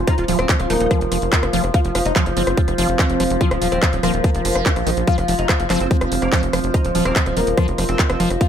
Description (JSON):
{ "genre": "psychedelic trance", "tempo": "144 BPM", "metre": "4/4", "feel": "straight", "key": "unclear", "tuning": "A4 = 440 Hz", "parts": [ { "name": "overtone-sweeping drone", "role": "sustained chords", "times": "0.0-8.5 s", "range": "F3", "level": "-28 LUFS", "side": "right 2 dB", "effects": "chorus, built-in reverb, sidechain pumping" }, { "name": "tight sequencer bass", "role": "bass", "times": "0.0-8.4 s", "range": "Eb1 to Bb1", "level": "-23 LUFS", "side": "equal", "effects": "none" }, { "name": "warbly tape-like pad", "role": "texture", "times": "0.0-8.5 s", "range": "F4 to F5", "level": "-25 LUFS", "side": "left 1 dB", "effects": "chorus, built-in reverb, sidechain pumping" }, { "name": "oud", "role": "melody", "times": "0.1-8.5 s", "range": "F3 to F4", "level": "-24 LUFS", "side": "equal", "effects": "phaser, vintage 12-bit sampler grit, sidechain pumping, tape echo" }, { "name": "metallic wobble bass", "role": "second line", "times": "0.1-0.9, 5.7-8.2 s", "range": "Bb3 to F4", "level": "-33 LUFS", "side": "right 3 dB", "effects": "none" }, { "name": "liquid acid bass", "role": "riff", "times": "0.1-8.5 s", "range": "Eb3 to Gb4", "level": "-25 LUFS", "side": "moving between left 3 dB and right 4 dB", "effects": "phaser, auto-pan, cassette tape, sidechain pumping, tape echo" }, { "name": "big-room dance drum kit", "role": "drums", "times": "0.1-8.5 s", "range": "handclaps, hi-hat, rim click", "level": "-23 LUFS", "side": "equal", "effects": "overdrive" }, { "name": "electronic kick drum", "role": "drums", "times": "0.1-8.5 s", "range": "none", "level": "-18 LUFS", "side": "equal", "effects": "none" } ], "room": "light reverb", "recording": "none", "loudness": "-16 LUFS", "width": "side -9 dB against mid", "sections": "0.0-8.5 A section", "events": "none", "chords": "0.0 F5", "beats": "| 0.07 0.49 0.91 1.32 | 1.74 2.16 2.58 2.99 | 3.41 3.83 4.24 4.66 | 5.08 5.49 5.91 6.33 | 6.74 7.16 7.58 7.99 | 8.41" }